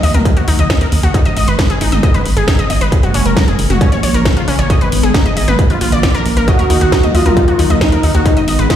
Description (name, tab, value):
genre	uplifting trance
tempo	135 BPM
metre	4/4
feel	straight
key	Eb minor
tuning	A4 = 440 Hz
part	lush unison pad	sustained chords	0.0-8.8 s	Db3 to Cb4	-20 LUFS	equal	chorus, phaser, sidechain pumping
part	wide unison pluck	arpeggios	0.0-8.8 s	Db4 to Eb5	-18 LUFS	left 2 dB	sidechain pumping, tape echo
part	tight sequencer bass	bass	0.0-8.7 s	Gb1 to Eb2	-16 LUFS	equal	tube saturation, sidechain pumping
part	techno drum kit	drums	0.0-8.8 s	hi-hat, snare drum, toms	-20 LUFS	left 1 dB	none
part	electronic kick drum	drums	0.3-8.8 s	none	-14 LUFS	equal	distortion
part	warm velvety synth lead	second line	6.5-8.8 s	Eb4 to Gb4	-15 LUFS	right 1 dB	chorus, tape echo
room	light reverb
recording	played on a big sound system in a bare room, large studio reverb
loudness	-10 LUFS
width	side -10 dB against mid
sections	0.0-8.8 A section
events	filter sweep on analog synth pad 0.0-8.8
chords	0.0 Ebm; 1.1 Abm; 2.9 Gbadd9; 3.8 Bbm; 4.7 Abm; 5.6 Bb; 6.5 Ebm; 8.3 Abm